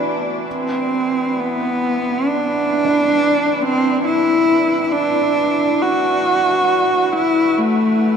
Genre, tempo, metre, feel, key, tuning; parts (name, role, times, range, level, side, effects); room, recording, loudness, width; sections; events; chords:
ambient; 68 BPM; 4/4; straight; A4 = 440 Hz
felt-muted upright piano; arpeggios; 0.0-8.2 s; D4 to F#4; -28 LUFS; right 2 dB
hand-pumped harmonium; drone; 0.0-8.2 s; E3 to B4; -28 LUFS; equal; stereo widening
warm cello; melody; 0.5-8.2 s; A3 to F#4; -15 LUFS; equal; ping-pong delay
wet huge ambient reverb, RT60 7.8 s; in a vast, echoing space; -15 LUFS; side -7 dB against mid
0.0-8.2 A section
0.5 E7(no3)